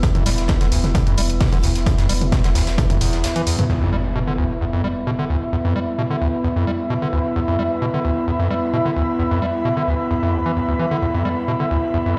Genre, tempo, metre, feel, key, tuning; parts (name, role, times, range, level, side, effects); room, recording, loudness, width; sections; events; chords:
driving peak-time techno; 131 BPM; 4/4; straight; A4 = 445 Hz
overdriven acid bass; riff; 0.0-12.1 s; D2 to G3; -24 LUFS; equal; distortion, sidechain pumping, tape echo
warm sub bass; bass; 0.0-3.2 s; E1; -24 LUFS; equal; tube saturation, sidechain pumping, low-pass filter
big rock drum kit; drums; 0.0-12.2 s; hi-hat, snare drum; -39 LUFS; equal
electronic kick drum; drums; 0.0-2.9 s; -22 LUFS; equal
punchy analog drum machine; drums; 0.0-3.7 s; hi-hat, toms; -28 LUFS; equal; low-pass filter on hats, low-pass filter on toms
airy breathy pad; texture; 0.0-12.2 s; B3 to B5; -25 LUFS; equal; chorus, sidechain pumping
impact; sound effects; 3.7-5.5 s; -29 LUFS; equal
moderate huge ambient reverb, RT60 4.4 s; played on a big sound system in a bare room, stone room reverb; -20 LUFS; mono
0.0-3.7 A section; 3.7-12.2 B section
impact 3.7-5.5
0.0 E5